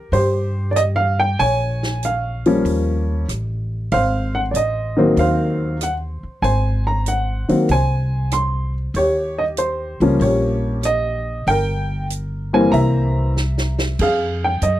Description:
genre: jazz piano trio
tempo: 95 BPM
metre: 4/4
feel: swing 69% on 8ths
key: Eb mixolydian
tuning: A4 = 440 Hz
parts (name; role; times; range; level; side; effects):
- warm baby grand piano; melody; 0.0-14.8 s; Eb3 to C6; -18 LUFS; equal; none
- upright bass; bass; 0.1-14.8 s; G1 to G2; -21 LUFS; equal; none
- swinging big-band drum kit; drums; 0.1-14.8 s; crash cymbal, hi-hat, kick drum, rim click, snare drum; -29 LUFS; right 2 dB; none
room: light reverb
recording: dry, close 1970s-style studio recording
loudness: -17 LUFS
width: side -14 dB against mid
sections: 0.0-14.8 A section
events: drum fill 13.4-14.0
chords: 0.0 N.C.; 1.4 Bbm7; 2.7 Eb9; 3.9 Ab9; 9.0 Eb9; 11.5 Gm; 12.7 C7; 14.0 Fm7

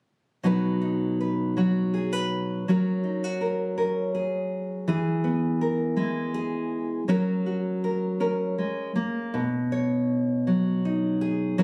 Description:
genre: folk, solo fingerstyle acoustic guitar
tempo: 81 BPM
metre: 3/4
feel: rubato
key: B major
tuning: A4 = 440 Hz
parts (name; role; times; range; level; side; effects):
- nylon-string guitar; solo; 0.4-11.6 s; B2 to C#5; -26 LUFS; equal; none
room: moderate small room reverb, RT60 0.6 s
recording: recorded on a phone in the room, studio reverb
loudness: -26 LUFS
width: mono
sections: 0.4-9.3 A section; 9.3-11.6 B section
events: none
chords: 0.4 B; 2.7 F#; 4.9 E; 7.1 F#; 9.3 B

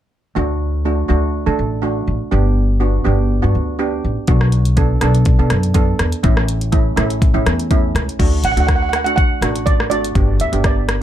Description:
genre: calypso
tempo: 123 BPM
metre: 4/4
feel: swing 53% on 16ths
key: D major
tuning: A4 = 438 Hz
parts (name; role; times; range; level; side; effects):
- steel pan; accompaniment; 0.4-10.8 s; A3 to A4; -20 LUFS; right 3 dB; none
- upright bass; bass; 0.4-11.0 s; G1 to D3; -17 LUFS; equal; none
- pop drum kit; drums; 4.3-11.0 s; crash cymbal, hi-hat, kick drum, rim click; -16 LUFS; left 1 dB; overdrive
- steel pan; melody; 8.4-11.0 s; D5 to F#5; -20 LUFS; right 4 dB; none
room: light reverb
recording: dark, warm production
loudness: -14 LUFS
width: side -11 dB against mid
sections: 0.4-8.2 A section; 8.2-11.0 B section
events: none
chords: 0.4 D; 2.3 G; 4.3 Bm7; 6.2 A; 8.2 D; 10.2 G

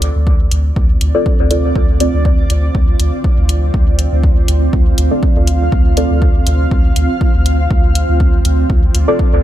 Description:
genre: dub techno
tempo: 121 BPM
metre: 4/4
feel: swing 54% on 16ths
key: D minor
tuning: A4 = 440 Hz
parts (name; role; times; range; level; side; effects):
- granular cloud pad; sustained chords; 0.6-9.4 s; C4 to F5; -20 LUFS; right 2 dB; built-in reverb, sidechain pumping
- soft dub sub bass; bass; 0.0-9.4 s; D2; -14 LUFS; equal; sidechain pumping
- electronic hi-hat; drums; 0.0-9.1 s; none; -22 LUFS; left 1 dB; none
- electronic kick drum; drums; 0.3-9.3 s; none; -14 LUFS; equal; none
- deep mellow chord stab; stabs; 1.1-9.4 s; C4 to D5; -18 LUFS; left 1 dB; chorus, phaser, sidechain pumping, dub echo
room: digital ambience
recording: none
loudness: -11 LUFS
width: side -13 dB against mid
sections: 0.0-9.4 A section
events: filter sweep on synth stab 0.0-9.4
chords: 0.0 Dm7

